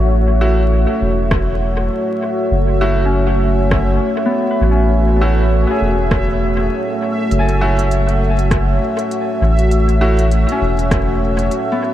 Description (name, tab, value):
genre	ambient dub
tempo	100 BPM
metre	4/4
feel	swing 58% on 16ths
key	F# minor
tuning	A4 = 445 Hz
part	deep dark ambient pad	sustained chords	0.0-11.9 s	A3 to E5	-18 LUFS	equal	chorus, built-in reverb
part	Celtic harp	arpeggios	0.0-11.9 s	B3 to G#5	-24 LUFS	left 2 dB	low-pass filter, ping-pong delay
part	soft dub sub bass	bass	0.0-11.5 s	E1 to A1	-15 LUFS	equal	none
part	bubbling stepped-filter texture	texture	0.0-11.9 s	E5	-26 LUFS	right 2 dB	chorus, built-in reverb
part	bright upright piano	stabs	0.4-10.2 s	A3 to F#4	-25 LUFS	right 1 dB	vintage 12-bit sampler grit, dub echo
part	electronic kick drum	drums	1.3-11.1 s	none	-20 LUFS	equal	overdrive
part	organic electronic drum kit	drums	1.3-11.7 s	hi-hat, rim click	-28 LUFS	equal	overdrive, dub echo
room	moderate huge ambient reverb, RT60 4.0 s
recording	dreamy mix soaked in reverb, vinyl crackle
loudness	-13 LUFS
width	side -12 dB against mid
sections	0.0-11.9 A section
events	filter sweep on harp 0.0-11.9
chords	0.0 F#m7